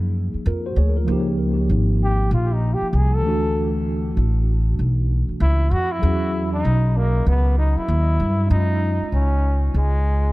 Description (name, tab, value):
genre	hip hop, jazz-hop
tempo	97 BPM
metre	4/4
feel	swing 62% on 16ths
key	unclear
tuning	A4 = 440 Hz
part	mellow tine electric piano	accompaniment	0.0-10.3 s	E3 to Db5	-26 LUFS	equal	medium stereo tremolo, tape echo
part	upright bass	bass	0.0-10.3 s	Ab1 to G2	-19 LUFS	equal	none
part	clear trombone	melody	2.0-10.3 s	Ab3 to A4	-25 LUFS	equal	tape echo
room	studio ambience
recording	echo-heavy mix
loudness	-17 LUFS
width	side -19 dB against mid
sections	0.0-8.5 A section; 8.5-10.3 B section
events	trombone solo 0.0-8.5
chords	0.0 Gbmaj9; 1.1 Dbmaj9; 3.2 Dadd9; 6.0 Emaj9; 8.5 Gbmaj7sus2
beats	0.46 | 1.08 1.70 2.32 2.93 | 3.55 4.17 4.79 5.41 | 6.03 6.65 7.26 7.88 | 8.50 9.12 9.74